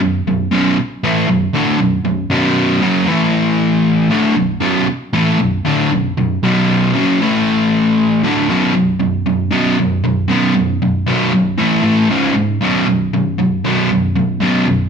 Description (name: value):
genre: rock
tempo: 116 BPM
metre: 4/4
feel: straight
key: B minor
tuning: A4 = 441 Hz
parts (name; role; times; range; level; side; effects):
- overdriven electric guitar; solo; 0.0-14.9 s; B1 to A3; -12 LUFS; equal; none
room: moderate large studio reverb, RT60 0.9 s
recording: band playing live in one room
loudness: -12 LUFS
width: side -6 dB against mid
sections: 0.0-8.5 A section; 8.5-14.9 B section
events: none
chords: 0.0 Bm; 3.1 A5; 4.1 Bm; 7.2 A5; 8.2 D5; 8.5 B5; 11.6 A5; 12.1 C#5; 12.6 B5